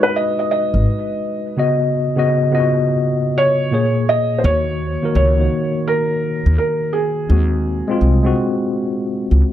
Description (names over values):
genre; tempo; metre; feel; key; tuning
lo-fi hip hop; 84 BPM; 4/4; swing 66% on 16ths; Eb minor; A4 = 440 Hz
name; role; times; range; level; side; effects
felt-muted upright piano; melody; 0.0-8.3 s; Ab4 to Eb5; -19 LUFS; right 2 dB; low-pass filter, plate reverb
tine electric piano; accompaniment; 0.0-9.5 s; Bb2 to Eb5; -18 LUFS; left 1 dB; overdrive, fast stereo tremolo, low-pass filter, plate reverb
upright bass; bass; 0.7-9.4 s; Ab1 to Eb2; -15 LUFS; equal; none
room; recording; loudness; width
moderate small room reverb, RT60 0.5 s; dark, warm production; -15 LUFS; side -11 dB against mid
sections
0.0-4.4 A section; 4.4-9.5 B section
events
none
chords
0.0 Abm7; 1.6 Db9sus4; 3.7 Bbm7; 4.4 Ebm7; 7.3 Ab7